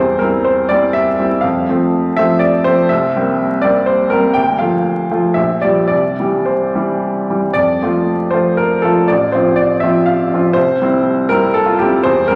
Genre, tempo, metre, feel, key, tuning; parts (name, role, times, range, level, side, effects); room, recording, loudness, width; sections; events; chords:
classical, romantic character piece for solo piano; 104-124 BPM; 3/4; rubato; F major; A4 = 440 Hz
clear baby grand piano; solo; 0.0-12.4 s; A1 to G5; -14 LUFS; equal
wet recital hall reverb, RT60 1.5 s; vinyl crackle; -14 LUFS; mono
0.0-7.6 A section; 7.6-12.4 A section
0.0 C/E; 1.4 F; 2.9 C7; 4.4 Dm; 5.4 Gm7/Bb; 5.9 C; 7.6 F; 9.1 F/A; 10.6 C